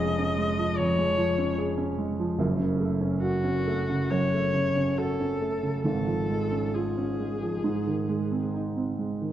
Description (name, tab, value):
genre	classical, romantic duo for viola and grand piano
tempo	66-75 BPM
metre	4/4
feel	rubato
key	Db major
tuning	A4 = 440 Hz
part	warm viola	melody	0.0-8.5 s	Gb4 to Eb5	-30 LUFS	left 2 dB	none
part	warm grand piano	accompaniment	0.0-9.3 s	F1 to Ab4	-26 LUFS	right 1 dB	none
room	wet scoring stage reverb, RT60 1.7 s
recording	dark, warm production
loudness	-24 LUFS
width	side -11 dB against mid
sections	0.0-9.3 A section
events	none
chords	0.0 Db/F; 2.4 Gbm; 5.8 Db/Ab; 7.6 Ab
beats	0.77 1.57 | 2.38 3.21 4.10 4.96 | 5.83 6.73 7.63 8.52